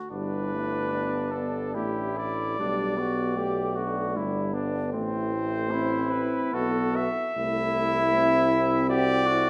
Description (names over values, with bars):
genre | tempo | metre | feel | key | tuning
classical, hymn-like piece for brass band | 74 BPM | 3/4 | uneven beats, rubato | G major | A4 = 440 Hz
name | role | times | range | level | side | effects
clear flugelhorn | second line | 0.0-9.5 s | C4 to G4 | -33 LUFS | equal | none
warm cornet | melody | 0.1-9.5 s | G4 to E5 | -31 LUFS | equal | none
warm euphonium | accompaniment | 0.1-9.5 s | D4 to G4 | -35 LUFS | equal | none
warm euphonium | accompaniment | 0.1-9.5 s | G3 to C4 | -34 LUFS | equal | none
clear tuba | bass | 0.1-9.5 s | G1 to C2 | -34 LUFS | equal | none
room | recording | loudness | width
wet recital hall reverb, RT60 1.4 s | none | -26 LUFS | mono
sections
0.1-9.5 A section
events
none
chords
0.1 G; 2.6 G/B; 4.9 Am; 7.4 Am/C